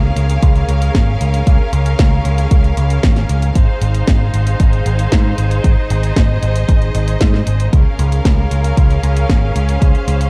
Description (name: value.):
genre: italo disco.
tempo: 115 BPM.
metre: 4/4.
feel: straight.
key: unclear.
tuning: A4 = 440 Hz.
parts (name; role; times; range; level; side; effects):
bright studio string section; sustained chords; 0.0-10.3 s; Db4 to F5; -25 LUFS; equal; none.
picked electric bass; bass; 0.0-10.3 s; Ab1 to Ab2; -17 LUFS; equal; none.
house drum kit; drums; 0.2-10.3 s; hi-hat, snare drum; -26 LUFS; equal; none.
electronic kick drum; drums; 0.4-9.9 s; none; -15 LUFS; equal; none.
room: little or no reverb.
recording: dark, warm production.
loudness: -14 LUFS.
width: mono.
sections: 0.0-10.3 A section.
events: none.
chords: 0.0 Db6; 3.6 Ab6; 7.7 Db6.